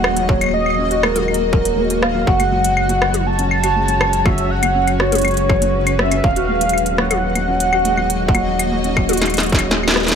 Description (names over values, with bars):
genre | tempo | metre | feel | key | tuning
IDM | 121 BPM | 4/4 | straight | unclear | A4 = 439 Hz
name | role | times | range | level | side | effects
warm velvety synth lead | melody | 0.0-9.7 s | A#4 to A5 | -19 LUFS | equal | chorus, tape echo
granular cloud pad | sustained chords | 0.0-10.2 s | A#3 to D#5 | -23 LUFS | left 2 dB | built-in reverb
felt-muted upright piano | arpeggios | 0.0-10.2 s | F#3 to F#4 | -22 LUFS | right 2 dB | tape echo
warm sub bass | bass | 0.0-10.2 s | D#1 to F#1 | -23 LUFS | equal | tube saturation
industrial drum kit | drums | 0.0-10.2 s | claves, hi-hat, rim click, snare drum, toms | -20 LUFS | left 2 dB | overdrive
electronic kick drum | drums | 0.3-9.6 s | none | -18 LUFS | equal | distortion, overdrive
room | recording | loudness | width
light reverb, digital ambience | none | -14 LUFS | side -7 dB against mid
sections
0.0-10.2 A section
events
drum fill 9.2-10.2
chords
0.0 D#madd9; 2.3 F#m; 6.2 D#madd9